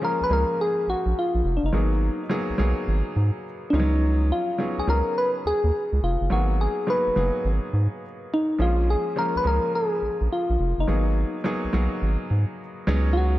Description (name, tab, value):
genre	R&B, new jack swing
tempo	105 BPM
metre	4/4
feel	swing 66% on 16ths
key	G# dorian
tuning	A4 = 440 Hz
part	soft struck synth lead	melody	0.0-13.4 s	D4 to B4	-24 LUFS	left 1 dB	chorus
part	clear concert grand piano	accompaniment	0.0-13.4 s	E#3 to G#4	-29 LUFS	equal	none
part	round analog bass	bass	0.2-13.4 s	E#1 to G#2	-22 LUFS	equal	none
room	light reverb, small room ambience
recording	dark, warm production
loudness	-21 LUFS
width	side -15 dB against mid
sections	0.0-13.4 A section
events	none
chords	0.0 A#m7; 1.7 G#m9; 3.7 C#9sus4; 6.3 G#m9; 8.6 A#m7; 10.9 G#m9; 12.9 C#9sus4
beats	0.02 0.59 1.16 | 1.73 2.31 2.88 3.45 | 4.02 4.59 5.16 5.73 | 6.30 6.88 7.45 8.02 | 8.59 9.16 9.73 10.30 | 10.88 11.45 12.02 12.59 | 13.16